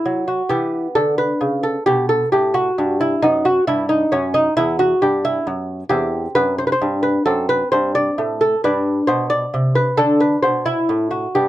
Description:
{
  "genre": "classical, baroque-style dance for lute",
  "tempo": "88 BPM (dotted quarters)",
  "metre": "12/8",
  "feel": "rubato",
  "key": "unclear",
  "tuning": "A4 = 440 Hz",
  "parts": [
    { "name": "lute", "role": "solo", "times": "0.0-11.5 s", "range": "E2 to D5", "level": "-16 LUFS", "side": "equal", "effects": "none" }
  ],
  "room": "light reverb",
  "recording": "dry, close 1970s-style studio recording",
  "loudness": "-16 LUFS",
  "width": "side -14 dB against mid",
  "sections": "0.0-11.5 A section",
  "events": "none",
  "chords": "0.5 Em; 3.2 B5/F#; 4.6 Em; 5.9 C/E; 7.3 D7/F#; 8.6 G; 10.0 D5",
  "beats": "| 0.50 1.18 1.87 2.55 | 3.23 3.90 4.58 5.24 | 5.92 6.59 7.26 7.95 | 8.63 9.30 9.98 10.66 | 11.35"
}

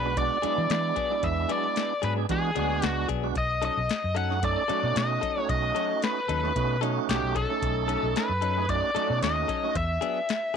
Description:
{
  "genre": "straight-eighth soul blues",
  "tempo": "113 BPM",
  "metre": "4/4",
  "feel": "swing 54% on 16ths",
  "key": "unclear",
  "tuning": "A4 = 440 Hz",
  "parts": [
    { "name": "biting lead guitar", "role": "melody", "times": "0.0-10.6 s", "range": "G4 to F#5", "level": "-28 LUFS", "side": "left 2 dB", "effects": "overdrive" },
    { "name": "tonewheel organ", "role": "accompaniment", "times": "0.0-9.8 s", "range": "G#3 to A4", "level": "-31 LUFS", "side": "right 16 dB", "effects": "overdrive, fast rotary speaker" },
    { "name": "direct-recorded clean electric guitar", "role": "stabs", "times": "0.0-10.6 s", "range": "F#3 to A4", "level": "-34 LUFS", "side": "left 13 dB", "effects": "spring reverb" },
    { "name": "vintage muted fingered electric bass", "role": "bass", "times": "0.0-10.0 s", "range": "B1 to E3", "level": "-30 LUFS", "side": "equal", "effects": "none" },
    { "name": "soft vintage rhythm box", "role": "drums", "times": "0.2-10.4 s", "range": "hi-hat, kick drum, snare drum", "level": "-32 LUFS", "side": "left 3 dB", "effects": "none" }
  ],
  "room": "little or no reverb",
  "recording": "1960s-style stereo with parts hard left and right",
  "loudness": "-24 LUFS",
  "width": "side -7 dB against mid",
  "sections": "0.0-10.6 A section",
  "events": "none",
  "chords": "0.0 E9; 3.4 B9; 9.8 E9",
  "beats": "0.17 0.70 | 1.23 1.76 2.29 2.83 | 3.36 3.89 4.42 4.96 | 5.49 6.02 6.55 7.09 | 7.62 8.15 8.69 9.22 | 9.76 10.29"
}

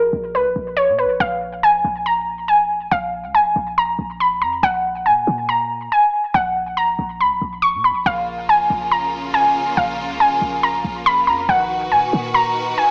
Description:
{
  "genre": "hip hop, trap",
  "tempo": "140 BPM",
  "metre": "4/4",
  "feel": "half-time",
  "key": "Bb phrygian",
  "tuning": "A4 = 442 Hz",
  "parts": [
    { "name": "warbly dusty pluck", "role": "melody", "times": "0.0-12.9 s", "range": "Bb4 to Db6", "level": "-19 LUFS", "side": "equal", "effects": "chorus" },
    { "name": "clean 808-style bass", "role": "bass", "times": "0.0-12.7 s", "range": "Bb1 to Bb2", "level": "-32 LUFS", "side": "equal", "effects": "none" },
    { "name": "bright studio string section", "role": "sustained chords", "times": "8.1-12.9 s", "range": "Db3 to B4", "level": "-29 LUFS", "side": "equal", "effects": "none" }
  ],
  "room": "moderate studio reverb, RT60 0.7 s",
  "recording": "dry, gritty hardware recording, transformer saturation, small speaker sound",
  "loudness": "-18 LUFS",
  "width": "mono",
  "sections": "0.0-1.2 A section; 1.2-12.9 B section",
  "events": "none",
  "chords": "0.0 B5/Bb; 1.2 Bb5; 4.6 N.C.; 8.1 Bbm; 11.5 B/Bb",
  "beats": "0.34 0.77 | 1.20 1.63 2.06 2.49 | 2.92 3.35 3.77 4.20 | 4.63 5.06 5.49 5.92 | 6.34 6.77 7.20 7.63 | 8.06 8.49 8.92 9.35 | 9.77 10.20 10.63 11.06 | 11.49 11.92 12.35 12.77"
}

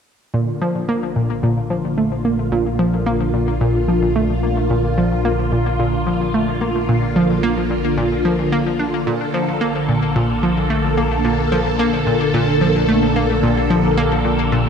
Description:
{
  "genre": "ambient, sequencer-driven space music",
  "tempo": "110 BPM",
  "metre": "4/4",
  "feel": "straight",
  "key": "Bb major",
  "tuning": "A4 = 440 Hz",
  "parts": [
    { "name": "phased string machine", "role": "sustained chords", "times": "0.3-14.7 s", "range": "D3 to A4", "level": "-19 LUFS", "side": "equal", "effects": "ensemble chorus, phaser" },
    { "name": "analog pluck", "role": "riff", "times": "0.3-14.7 s", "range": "Bb2 to D4", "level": "-19 LUFS", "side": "equal", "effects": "chorus, ping-pong delay" },
    { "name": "analog drone", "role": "bass", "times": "1.3-14.7 s", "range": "Bb1", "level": "-24 LUFS", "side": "equal", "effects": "chorus" },
    { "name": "pulsing gated texture", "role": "texture", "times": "0.3-14.7 s", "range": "F4 to F5", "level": "-37 LUFS", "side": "right 1 dB", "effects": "none" }
  ],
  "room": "wet plate reverb, RT60 2.7 s",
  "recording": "dark, warm production",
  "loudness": "-16 LUFS",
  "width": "side -7 dB against mid",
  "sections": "0.3-14.7 A section",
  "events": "none",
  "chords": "0.3 Bb",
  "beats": "| 0.34 0.88 1.43 1.98 | 2.52 3.07 3.61 4.16 | 4.70 5.25 5.79 6.34 | 6.88 7.43 7.97 8.52 | 9.07 9.61 10.16 10.70 | 11.25 11.79 12.34 12.88 | 13.43 13.97 14.52"
}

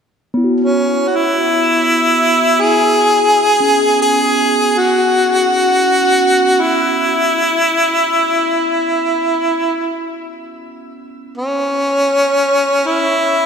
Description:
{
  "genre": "world meditative, free-time meditation music",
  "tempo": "free time",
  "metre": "none",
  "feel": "none",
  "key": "E major pentatonic",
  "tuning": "A4 = 441 Hz",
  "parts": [
    { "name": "quartz singing bowl", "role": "texture", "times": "0.3-11.7 s", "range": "B3 to F#4", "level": "-21 LUFS", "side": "right 2 dB", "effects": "shimmer reverb" },
    { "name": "clear harmonica", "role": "melody", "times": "0.6-13.5 s", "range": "C#4 to G#4", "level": "-12 LUFS", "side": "equal", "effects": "shimmer reverb" }
  ],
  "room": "wet lush hall reverb, RT60 2.6 s",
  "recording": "dreamy mix soaked in reverb",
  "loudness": "-12 LUFS",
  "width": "side -6 dB against mid",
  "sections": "0.0-13.5 A section",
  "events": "none",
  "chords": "none",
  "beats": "free time"
}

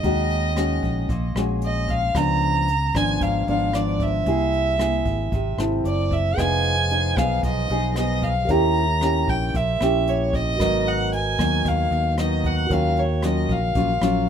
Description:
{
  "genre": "bossa nova",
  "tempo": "114 BPM",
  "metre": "4/4",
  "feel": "straight",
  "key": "Eb minor",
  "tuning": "A4 = 440 Hz",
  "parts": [
    { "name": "dark fiddle", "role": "melody", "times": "0.0-14.3 s", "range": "Db5 to Bb5", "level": "-24 LUFS", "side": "right 1 dB", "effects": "none" },
    { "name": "nylon-string guitar", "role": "accompaniment", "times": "0.0-14.3 s", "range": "Ab2 to A4", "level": "-25 LUFS", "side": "left 1 dB", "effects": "none" },
    { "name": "fingered electric bass", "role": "bass", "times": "0.0-14.3 s", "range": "F1 to Eb2", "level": "-24 LUFS", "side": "equal", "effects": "none" },
    { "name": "jazz brush drum kit", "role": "drums", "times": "0.0-14.1 s", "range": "hi-hat, kick drum, rim click", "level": "-30 LUFS", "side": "equal", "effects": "none" },
    { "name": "mellow tine electric piano", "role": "accompaniment", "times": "6.3-14.3 s", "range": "Gb4 to F5", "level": "-30 LUFS", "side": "right 4 dB", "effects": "none" }
  ],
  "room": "little or no reverb",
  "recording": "none",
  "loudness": "-19 LUFS",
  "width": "side -8 dB against mid",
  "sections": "0.0-14.3 A section",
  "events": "none",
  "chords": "0.0 Ebm7; 2.1 Db7b9; 4.3 Caug7; 5.8 F#m7b5; 6.4 Fm7b5; 8.5 Eb7b9; 10.6 Abm7; 12.7 Ebm9",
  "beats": "| 0.03 0.56 1.09 1.61 | 2.14 2.67 3.20 3.73 | 4.26 4.79 5.32 5.84 | 6.37 6.90 7.43 7.96 | 8.48 9.01 9.54 10.06 | 10.59 11.12 11.64 12.17 | 12.70 13.22 13.75 14.28"
}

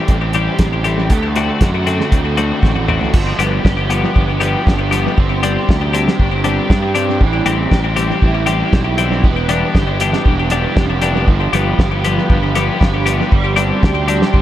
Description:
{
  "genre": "indie rock",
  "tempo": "118 BPM",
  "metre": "4/4",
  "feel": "straight",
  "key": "G mixolydian",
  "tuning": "A4 = 437 Hz",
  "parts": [
    { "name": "overdriven electric guitar", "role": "riff", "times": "0.0-14.4 s", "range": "E3 to G4", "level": "-22 LUFS", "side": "right 7 dB", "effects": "ensemble chorus, tape echo" },
    { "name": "twelve-string electric guitar", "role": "riff", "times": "0.0-14.4 s", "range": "D3 to G4", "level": "-18 LUFS", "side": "left 6 dB", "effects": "tape echo" },
    { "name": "fuzz fingered electric bass", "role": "bass", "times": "0.1-14.4 s", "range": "E1 to G2", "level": "-18 LUFS", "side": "equal", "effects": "overdrive" },
    { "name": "cloth-damped thuddy drum kit", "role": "drums", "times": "0.1-14.4 s", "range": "crash cymbal, hi-hat, kick drum, snare drum, toms", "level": "-17 LUFS", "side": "equal", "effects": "tape echo" },
    { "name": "brassy analog pad", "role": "sustained chords", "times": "11.3-14.4 s", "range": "G4 to C6", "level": "-26 LUFS", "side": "right 4 dB", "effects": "chorus" }
  ],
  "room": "light reverb, small room ambience",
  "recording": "echo-heavy mix",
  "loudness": "-12 LUFS",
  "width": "side -12 dB against mid",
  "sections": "0.0-3.1 A section; 3.1-14.4 B section",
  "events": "drum fill 2.6-3.1",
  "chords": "0.0 Am7; 1.1 D7; 3.1 G7; 5.2 Csus2/G; 7.2 Am7; 9.2 Em7; 11.3 G7; 13.3 Csus2/G",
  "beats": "0.09 0.60 | 1.11 1.62 2.12 2.63 | 3.14 3.65 4.16 4.67 | 5.18 5.68 6.19 6.70 | 7.21 7.72 8.22 8.73 | 9.24 9.75 10.26 10.77 | 11.28 11.79 12.30 12.81 | 13.32 13.83 14.34"
}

